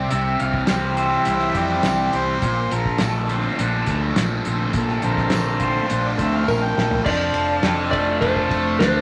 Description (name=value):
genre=psychedelic rock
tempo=104 BPM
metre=4/4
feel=straight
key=unclear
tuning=A4 = 440 Hz
part: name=combo organ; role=sustained chords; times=0.0-9.0 s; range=D3 to G5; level=-27 LUFS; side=equal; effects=none
part: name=fuzz guitar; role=riff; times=0.0-9.0 s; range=Bb2 to C5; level=-25 LUFS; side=equal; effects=distortion, phaser
part: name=fingered electric bass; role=bass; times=0.0-9.0 s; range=F1 to F2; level=-28 LUFS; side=equal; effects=none
part: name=cloth-damped thuddy drum kit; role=drums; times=0.1-8.9 s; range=crash cymbal, hi-hat, kick drum, ride cymbal, snare drum, toms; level=-27 LUFS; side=equal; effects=none
part: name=tambourine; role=percussion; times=0.7-6.6 s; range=none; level=-44 LUFS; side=equal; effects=none
part: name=electric slide guitar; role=melody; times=6.5-9.0 s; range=Bb4 to D5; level=-25 LUFS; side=equal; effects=none
room=wet large studio reverb, RT60 1.0 s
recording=none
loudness=-20 LUFS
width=mono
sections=0.0-7.1 A section; 7.1-9.0 B section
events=transistor combo organ solo 0.0-7.1; drum fill 6.5-7.1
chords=0.0 C; 2.4 Bbmaj7; 7.1 F6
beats=| 0.11 0.69 1.27 1.85 | 2.43 3.00 3.58 4.16 | 4.74 5.32 5.90 6.48 | 7.06 7.63 8.21 8.79